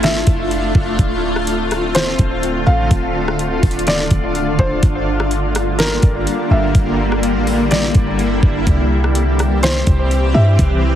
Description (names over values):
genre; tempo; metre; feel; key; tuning
hip hop, atmospheric cloud-rap; 125 BPM; 4/4; half-time; unclear; A4 = 442 Hz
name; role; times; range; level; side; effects
felt-muted upright piano; melody; 0.0-10.6 s; Bb4 to F5; -22 LUFS; equal; tape echo
granular cloud pad; sustained chords; 0.0-11.0 s; D3 to G4; -18 LUFS; left 1 dB; built-in reverb, sidechain pumping
clean 808-style bass; bass; 0.0-11.0 s; D1 to G2; -17 LUFS; equal; none
smooth R&B drum kit; drums; 0.0-10.7 s; hi-hat, kick drum, rim click, snare drum; -18 LUFS; equal; none
room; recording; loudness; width
little or no reverb; heavily compressed radio sound, multiband compression; -13 LUFS; side -11 dB against mid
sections
0.0-11.0 A section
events
none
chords
0.0 Fmaj7; 1.0 Dm7; 4.8 Gm7; 8.7 C